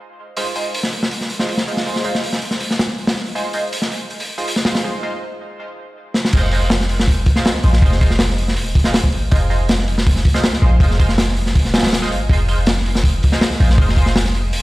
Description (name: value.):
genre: drum and bass, jungle.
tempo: 161 BPM.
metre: 4/4.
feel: straight.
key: F minor.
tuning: A4 = 440 Hz.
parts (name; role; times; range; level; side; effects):
band-passed chord stab; stabs; 0.4-14.1 s; Ab3 to C5; -25 LUFS; right 1 dB; chorus, phaser, dub echo.
crunchy breakbeat drum kit; drums; 0.4-14.6 s; crash cymbal, hi-hat, kick drum, snare drum; -16 LUFS; equal; none.
warm 808-style bass; bass; 6.3-14.6 s; Eb1 to Bb1; -17 LUFS; equal; none.
room: small room ambience.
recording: played on a big sound system in a bare room, large studio reverb.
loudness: -14 LUFS.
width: side -19 dB against mid.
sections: 0.0-6.3 A section; 6.3-14.6 B section.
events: break 4.8-6.3; drum fill 6.1; drop 6.3-14.6.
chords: 0.0 Fm7.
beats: 0.00 | 0.37 0.74 1.12 1.49 | 1.86 2.23 2.61 2.98 | 3.35 3.73 4.10 4.47 | 4.84 5.22 5.59 5.96 | 6.33 6.71 7.08 7.45 | 7.83 8.20 8.57 8.94 | 9.32 9.69 10.06 10.43 | 10.81 11.18 11.55 11.92 | 12.30 12.67 13.04 13.41 | 13.79 14.16 14.53.